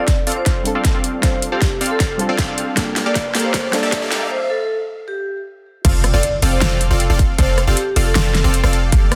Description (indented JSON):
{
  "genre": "future bass",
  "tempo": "156 BPM",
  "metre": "4/4",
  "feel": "half-time",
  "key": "F major",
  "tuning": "A4 = 440 Hz",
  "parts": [
    { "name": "vibraphone with medium hard mallets", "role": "melody", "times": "0.0-8.4 s", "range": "G4 to D5", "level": "-26 LUFS", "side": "equal", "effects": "sidechain pumping, delay" },
    { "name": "soft round pluck", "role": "accompaniment", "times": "0.0-4.3 s", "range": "G3 to A4", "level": "-28 LUFS", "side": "equal", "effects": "chorus, sidechain pumping, delay" },
    { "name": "supersaw stab", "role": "riff", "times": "0.0-9.2 s", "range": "Bb3 to F5", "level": "-24 LUFS", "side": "equal", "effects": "sidechain pumping, low-pass filter, delay" },
    { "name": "riser and impact", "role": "sound effects", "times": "2.1-7.4 s", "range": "none", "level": "-33 LUFS", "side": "equal", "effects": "none" },
    { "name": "big-room dance drum kit", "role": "drums", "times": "0.1-9.2 s", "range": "crash cymbal, hi-hat, rim click, snare drum", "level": "-24 LUFS", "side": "equal", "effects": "overdrive, high-pass filter on snare, high-pass filter on hats, high-pass filter on cymbals" },
    { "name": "electronic kick drum", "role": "drums", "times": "0.1-9.0 s", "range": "none", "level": "-19 LUFS", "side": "equal", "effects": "overdrive" },
    { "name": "warm 808-style bass", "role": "bass", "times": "5.8-9.2 s", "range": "F1 to G1", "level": "-19 LUFS", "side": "equal", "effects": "sidechain pumping" }
  ],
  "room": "light reverb",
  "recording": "dense, heavily limited modern master, high-pass filter",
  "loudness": "-17 LUFS",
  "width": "mono",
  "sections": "0.0-5.8 A section; 5.8-9.2 B section",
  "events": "build-up 0.0-5.8; drum fill 0.0-4.3; filter sweep on supersaw synth 0.0-5.8; break 4.3-5.8; drop 5.8-9.2; impact 5.8-7.4",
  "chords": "0.0 F6; 2.8 Gm9; 5.7 N.C.; 5.8 F6",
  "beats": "0.08 0.46 0.85 | 1.23 1.62 2.00 2.39 | 2.77 3.15 3.54 3.92 | 4.31 4.69 5.08 5.46 | 5.85 6.23 6.62 7.00 | 7.39 7.77 8.15 8.54 | 8.92"
}